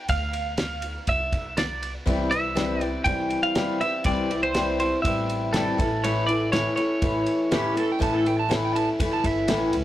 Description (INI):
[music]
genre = folk rock and heartland rock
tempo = 122 BPM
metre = 4/4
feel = straight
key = unclear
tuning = A4 = 440 Hz
[part]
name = twelve-string electric guitar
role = melody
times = 0.0-9.4 s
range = A4 to G5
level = -27 LUFS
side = right 1 dB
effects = digital delay
[part]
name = upright bass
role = bass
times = 0.1-9.8 s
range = G1 to D2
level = -32 LUFS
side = equal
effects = none
[part]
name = cloth-damped thuddy drum kit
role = drums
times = 0.1-9.8 s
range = kick drum, ride cymbal, snare drum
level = -29 LUFS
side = equal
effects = none
[part]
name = picked steel-string acoustic guitar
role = accompaniment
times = 2.1-9.8 s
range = A2 to E4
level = -24 LUFS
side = left 2 dB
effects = none
[part]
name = overdriven slide guitar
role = second line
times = 7.5-9.5 s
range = G4 to A5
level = -28 LUFS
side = right 5 dB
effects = none
[sound]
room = moderate small room reverb, RT60 0.6 s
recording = rough rehearsal-room recording, tube saturation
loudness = -22 LUFS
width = side -13 dB against mid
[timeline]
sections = 0.0-9.8 A section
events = none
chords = 0.0 Dm; 2.1 C; 5.8 A